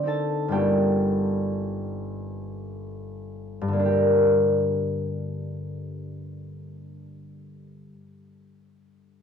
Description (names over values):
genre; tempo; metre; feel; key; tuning
classical, solo harp piece; 36-43 BPM (dotted quarters); 6/8; rubato; G minor; A4 = 440 Hz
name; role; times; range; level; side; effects
concert harp; solo; 0.0-8.1 s; G1 to D6; -24 LUFS; left 1 dB; none
room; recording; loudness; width
light reverb; dark, warm production; -22 LUFS; side -7 dB against mid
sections
0.0-3.6 A section; 3.6-6.8 B section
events
slowing down 0.0-3.6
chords
0.0 D5; 0.5 Gm